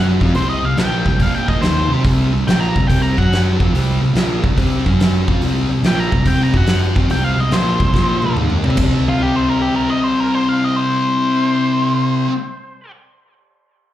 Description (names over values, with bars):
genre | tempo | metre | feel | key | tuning
blues rock power trio and southern rock | 142 BPM | 4/4 | swing 68% on 8ths | C minor | A4 = 440 Hz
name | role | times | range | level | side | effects
octave-fuzz lead guitar | melody | 0.0-12.9 s | F4 to Bb5 | -22 LUFS | left 1 dB | distortion, slapback echo
thick fuzz guitar | riff | 0.0-12.3 s | Bb2 to C5 | -18 LUFS | left 1 dB | distortion, slapback echo
vintage muted picked electric bass | bass | 0.0-12.1 s | Bb1 to C3 | -18 LUFS | equal | none
big rock drum kit | drums | 0.2-8.9 s | crash cymbal, hi-hat, kick drum, snare drum, toms | -19 LUFS | equal | none
room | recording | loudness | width
small room reverb | live gig heard through the venue's PA, club reverb | -14 LUFS | side -12 dB against mid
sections
0.0-8.8 A section; 8.8-12.1 B section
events
drum fill 7.9-8.8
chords
0.2 C5; 1.2 Bb5; 1.6 Cm; 3.1 F#5; 3.5 C5; 4.8 F#5; 5.2 C5; 6.5 F#5; 6.9 C5; 7.9 Bb5; 8.4 Cm; 8.8 C5